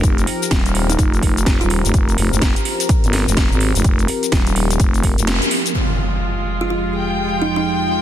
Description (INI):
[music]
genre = bass house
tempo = 126 BPM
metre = 4/4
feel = swing 61% on 16ths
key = F minor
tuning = A4 = 440 Hz
[part]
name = sweeping resonant pad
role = sustained chords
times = 0.0-8.0 s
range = F2 to Bb4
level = -25 LUFS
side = left 1 dB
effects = chorus, sidechain pumping
[part]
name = growling FM bass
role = bass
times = 0.0-5.4 s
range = Eb1 to Ab1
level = -18 LUFS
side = equal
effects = sidechain pumping
[part]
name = electronic kick drum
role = drums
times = 0.0-5.2 s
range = none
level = -16 LUFS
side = equal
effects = small room ambience
[part]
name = house drum kit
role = drums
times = 0.0-8.0 s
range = hi-hat, shaker, snare drum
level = -22 LUFS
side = equal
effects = low-pass filter on hats, small room ambience, low-pass filter on perc, low-pass filter on snare
[part]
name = kalimba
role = melody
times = 0.9-1.8, 6.6-7.7 s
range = Eb4 to F4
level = -25 LUFS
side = right 3 dB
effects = ping-pong delay
[part]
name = impact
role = sound effects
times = 5.7-7.7 s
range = none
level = -23 LUFS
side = equal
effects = none
[part]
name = rich chamber string section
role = texture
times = 5.8-8.0 s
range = Ab3 to G5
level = -21 LUFS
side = left 1 dB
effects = sidechain pumping
[sound]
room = light reverb, digital ambience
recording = dense, heavily limited modern master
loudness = -15 LUFS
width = side -11 dB against mid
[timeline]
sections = 0.0-5.7 A section; 5.7-8.0 B section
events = kick drops out 5.3-5.7; band accent 5.3; impact 5.7-7.7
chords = 0.0 Fsus2; 5.7 Fmadd9